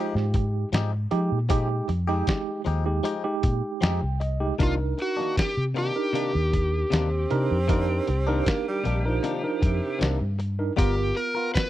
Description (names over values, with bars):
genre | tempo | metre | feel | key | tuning
straight-eighth soul blues | 78 BPM | 4/4 | straight | C minor | A4 = 444 Hz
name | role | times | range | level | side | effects
breathy tenor saxophone | second line | 0.0-0.7, 6.9-10.4 s | C3 to C4 | -32 LUFS | right 4 dB | none
mellow tine electric piano | accompaniment | 0.0-11.7 s | Ab3 to G5 | -29 LUFS | right 4 dB | overdrive, fast stereo tremolo
direct-recorded clean electric guitar | stabs | 0.0-11.6 s | C3 to A#4 | -32 LUFS | left 7 dB | none
vintage muted fingered electric bass | bass | 0.2-11.1 s | G1 to F3 | -25 LUFS | equal | none
lo-fi sampler-style drum kit | drums | 0.2-11.7 s | hi-hat, kick drum, snare drum | -25 LUFS | equal | none
overdriven slide guitar | melody | 4.6-11.7 s | F4 to B4 | -28 LUFS | equal | none
room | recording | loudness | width
digital ambience | dry, close 1970s-style studio recording | -23 LUFS | side -14 dB against mid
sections
0.0-11.7 A section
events
tine electric piano fill 3.4-4.6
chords
0.0 Fm9; 4.6 Cm9; 10.8 G7#9